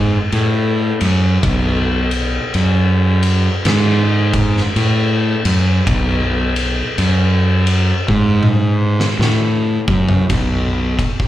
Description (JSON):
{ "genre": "stoner and doom metal", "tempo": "54 BPM", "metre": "4/4", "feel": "swing 62% on 8ths", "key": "unclear", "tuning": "A4 = 441 Hz", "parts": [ { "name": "fuzz fingered electric bass", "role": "bass", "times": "0.0-11.0 s", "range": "B1 to A2", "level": "-14 LUFS", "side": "equal", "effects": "overdrive, tube saturation" }, { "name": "oversized low-tuned drum kit", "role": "drums", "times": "0.3-11.3 s", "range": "kick drum, ride cymbal, snare drum, toms", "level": "-19 LUFS", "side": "left 1 dB", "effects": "none" } ], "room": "little or no reverb", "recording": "live gig heard through the venue's PA, club reverb", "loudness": "-13 LUFS", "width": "side -13 dB against mid", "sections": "0.0-10.3 A section", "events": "drum fill 8.1-10.3", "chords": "none", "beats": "0.33 | 1.44 2.54 3.65 4.76 | 5.87 6.98 8.08 9.19 | 10.30" }